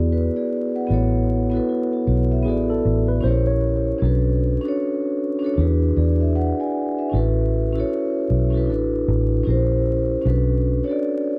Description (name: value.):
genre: lo-fi hip hop.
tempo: 77 BPM.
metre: 4/4.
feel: swing 62% on 16ths.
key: B dorian.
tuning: A4 = 440 Hz.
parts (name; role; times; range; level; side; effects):
vibraphone with soft mallets; accompaniment; 0.0-11.4 s; B3 to G#5; -24 LUFS; equal; cassette tape, low-pass filter.
vintage muted fingered electric bass; bass; 0.0-10.8 s; A1 to E2; -22 LUFS; equal; none.
mellow tine electric piano; second line; 2.5-4.0 s; G#4 to C#5; -31 LUFS; equal; low-pass filter, analog delay.
room: light reverb.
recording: vinyl crackle.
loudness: -21 LUFS.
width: mono.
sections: 0.0-11.4 A section.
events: none.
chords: 0.0 E9; 0.9 A69; 2.5 D6/A; 3.2 A#dim7; 4.0 Bm9; 5.6 E9; 7.1 A69; 8.7 D6/A; 9.5 A#dim7; 10.2 Bm9.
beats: 0.12 | 0.90 1.67 2.45 3.23 | 4.01 4.79 5.57 6.35 | 7.13 7.91 8.69 9.47 | 10.24 11.03.